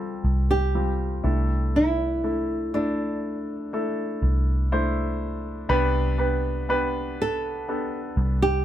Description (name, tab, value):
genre	pop ballad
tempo	61 BPM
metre	4/4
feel	straight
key	unclear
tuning	A4 = 440 Hz
part	flamenco guitar	melody	0.0-8.6 s	D4 to A4	-26 LUFS	right 1 dB	none
part	warm grand piano	accompaniment	0.0-8.6 s	C3 to C5	-27 LUFS	left 1 dB	none
part	vintage muted fingered electric bass	bass	0.0-8.6 s	C2	-24 LUFS	equal	none
room	light reverb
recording	band playing live in one room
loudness	-22 LUFS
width	side -11 dB against mid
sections	0.0-8.6 A section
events	none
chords	0.0 Fsus2/C; 1.2 Dsus2/C; 5.7 G/C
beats	0.75 | 1.75 2.74 3.73 4.72 | 5.71 6.70 7.68